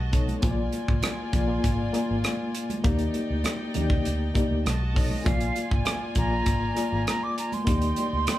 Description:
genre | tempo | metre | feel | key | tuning
lush 1970s-style soul | 99 BPM | 4/4 | straight | unclear | A4 = 439 Hz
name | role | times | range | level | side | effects
warm studio violin section | second line | 0.0-8.4 s | Eb4 to A5 | -36 LUFS | left 2 dB | none
vintage muted fingered electric bass | bass | 0.0-8.2 s | Ab1 to Eb2 | -29 LUFS | equal | none
reed electric piano | accompaniment | 0.1-8.4 s | Bb3 to D5 | -29 LUFS | left 2 dB | fast tremolo
tight funk drum kit | drums | 0.1-8.4 s | hi-hat, kick drum, rim click | -27 LUFS | equal | none
congas | percussion | 0.3-8.4 s | none | -37 LUFS | right 3 dB | none
breathy silver concert flute | melody | 5.0-8.4 s | D#5 to D6 | -30 LUFS | right 2 dB | none
room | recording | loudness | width
moderate large studio reverb, RT60 0.9 s | band playing live in one room | -23 LUFS | side -14 dB against mid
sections
0.0-8.4 A section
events
none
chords
0.4 Bb7; 2.8 Ebmaj7; 4.7 B9; 5.3 Bb7; 7.7 Ebmaj7

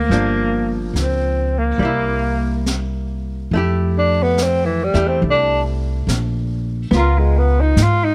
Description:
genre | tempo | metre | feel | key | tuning
jazz ballad | 71 BPM | 4/4 | swing 67% on 8ths | F major | A4 = 441 Hz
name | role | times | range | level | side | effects
breathy tenor saxophone | melody | 0.0-8.1 s | E3 to F4 | -21 LUFS | equal | none
archtop guitar, miked and amplified | accompaniment | 0.0-8.1 s | F3 to Bb4 | -27 LUFS | equal | none
upright bass | bass | 0.0-8.1 s | G1 to Ab2 | -21 LUFS | equal | none
jazz brush drum kit | drums | 0.1-8.1 s | brushed snare drum, hi-hat, snare drum | -31 LUFS | equal | none
room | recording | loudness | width
little or no reverb | none | -18 LUFS | mono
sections
0.0-3.5 A section; 3.5-8.1 B section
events
tenor saxophone solo 3.5-8.1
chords
0.1 Gm7; 1.8 C7; 3.5 Fmaj9; 6.9 Db6

